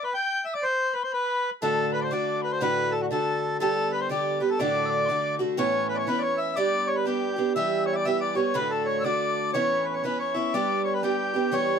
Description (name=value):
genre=celtic folk, Celtic polka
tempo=121 BPM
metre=2/4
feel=swing 62% on 8ths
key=D mixolydian, A mixolydian from 5.6 s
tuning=A4 = 439 Hz
part: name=accordion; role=melody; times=0.0-11.8 s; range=F#4 to G5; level=-27 LUFS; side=equal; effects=none
part: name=mellow hollow wooden whistle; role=second line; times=0.0-11.8 s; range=F#5 to G6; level=-32 LUFS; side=left 9 dB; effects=none
part: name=picked acoustic archtop guitar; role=accompaniment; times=1.6-11.8 s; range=D2 to G4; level=-26 LUFS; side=right 2 dB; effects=none
room=light reverb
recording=close, detailed microphones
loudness=-23 LUFS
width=side -6 dB against mid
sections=0.0-5.6 A section; 5.6-11.8 B section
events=none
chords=0.0 N.C.; 1.6 D; 3.6 G/D; 4.6 D; 5.6 Aadd9; 6.6 G; 7.6 Em; 8.6 D; 9.5 Aadd9; 10.5 G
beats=0.13 | 0.62 1.12 | 1.62 2.11 | 2.61 3.10 | 3.60 4.09 | 4.59 5.08 | 5.58 6.08 | 6.57 7.07 | 7.56 8.06 | 8.56 9.05 | 9.55 10.04 | 10.54 11.04 | 11.53